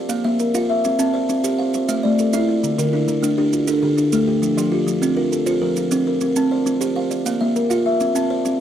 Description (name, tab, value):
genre	southern african traditional, mbira-style interlocking cycle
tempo	134 BPM (dotted quarters)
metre	12/8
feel	straight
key	C mixolydian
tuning	A4 = 443 Hz
part	buzzing kalimba	arpeggios	0.0-8.6 s	D3 to A5	-19 LUFS	left 2 dB	none
part	buzzing kalimba	arpeggios	0.0-8.6 s	D3 to F5	-21 LUFS	right 4 dB	none
part	maracas	percussion	0.1-8.6 s	none	-30 LUFS	right 9 dB	none
room	light reverb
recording	dry, close 1970s-style studio recording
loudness	-17 LUFS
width	side -10 dB against mid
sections	0.0-8.6 A section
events	none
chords	0.0 Bb; 0.8 C; 1.7 Am; 2.6 Dm; 4.4 F; 6.2 C5; 7.1 Bb; 8.0 C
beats	0.40 | 0.84 1.29 1.74 2.19 | 2.63 3.08 3.53 3.98 | 4.42 4.87 5.32 5.77 | 6.21 6.66 7.11 7.56 | 8.00 8.45